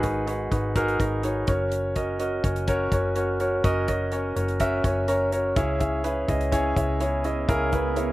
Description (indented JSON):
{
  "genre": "piano-driven pop",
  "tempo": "125 BPM",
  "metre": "4/4",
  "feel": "straight",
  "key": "unclear",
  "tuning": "A4 = 439 Hz",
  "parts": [
    { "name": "warm concert grand piano", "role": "accompaniment", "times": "0.0-8.1 s", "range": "G#2 to A#5", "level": "-24 LUFS", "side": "equal", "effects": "none" },
    { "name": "vintage muted fingered electric bass", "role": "bass", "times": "0.0-8.1 s", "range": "F#1 to C#2", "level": "-29 LUFS", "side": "left 1 dB", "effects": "none" },
    { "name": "natural country drum kit", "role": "drums", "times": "0.0-8.1 s", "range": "hi-hat, kick drum", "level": "-28 LUFS", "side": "equal", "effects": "none" },
    { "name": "swell", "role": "sound effects", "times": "6.6-8.1 s", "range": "none", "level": "-36 LUFS", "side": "right 4 dB", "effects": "none" }
  ],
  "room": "little or no reverb",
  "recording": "recorded outdoors, with no room sound",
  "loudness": "-22 LUFS",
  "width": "side -17 dB against mid",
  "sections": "0.0-8.1 A section",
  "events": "grand piano fill 4.6-5.6; swell 6.6-8.1",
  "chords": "0.0 G#m7; 1.5 F#; 5.6 C#m",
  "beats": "0.28 0.76 1.24 | 1.72 2.20 2.68 3.16 | 3.64 4.12 4.60 5.08 | 5.56 6.04 6.53 7.00 | 7.49 7.97"
}